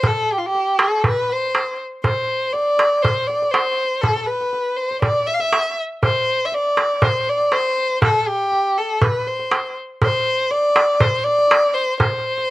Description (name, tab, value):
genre	Arabic maqam ensemble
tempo	120 BPM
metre	4/4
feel	straight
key	C maqam ajam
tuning	A4 = 440 Hz
part	dark violin	melody	0.0-12.5 s	F4 to F5	-18 LUFS	left 1 dB	none
part	darbuka	percussion	0.0-12.4 s	none	-19 LUFS	right 1 dB	none
room	little or no reverb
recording	recorded outdoors, with no room sound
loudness	-16 LUFS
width	side -17 dB against mid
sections	0.0-12.5 A section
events	none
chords	none